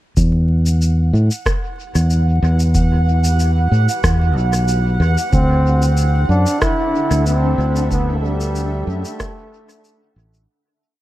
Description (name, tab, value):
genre	ambient dub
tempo	93 BPM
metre	4/4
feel	swing 53% on 16ths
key	E minor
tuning	A4 = 436 Hz
part	granular cloud pad	sustained chords	1.7-10.5 s	D4 to F#5	-28 LUFS	equal	built-in reverb
part	fingered electric bass	bass	0.2-10.4 s	A1 to A2	-14 LUFS	equal	tube saturation
part	electronic kick drum	drums	0.2-9.3 s	none	-20 LUFS	equal	small room ambience
part	electronic shaker and rim click	drums	0.2-10.5 s	none	-26 LUFS	equal	overdrive, small room ambience, dub echo
part	bubbling stepped-filter texture	texture	0.7-10.5 s	F#5	-26 LUFS	right 3 dB	chorus, built-in reverb
part	warm trombone	melody	5.3-10.1 s	G3 to E4	-21 LUFS	equal	dub echo
room	digital ambience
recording	echo-heavy mix, vinyl crackle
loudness	-14 LUFS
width	side -15 dB against mid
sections	0.2-10.5 groove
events	fade-in on ambient pad 0.2-10.5; fade-out 7.0-10.5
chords	0.2 Emadd9; 5.3 D9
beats	| 0.17 0.81 1.46 2.10 | 2.75 3.39 4.04 4.68 | 5.33 5.97 6.62 7.26 | 7.91 8.55 9.20 9.84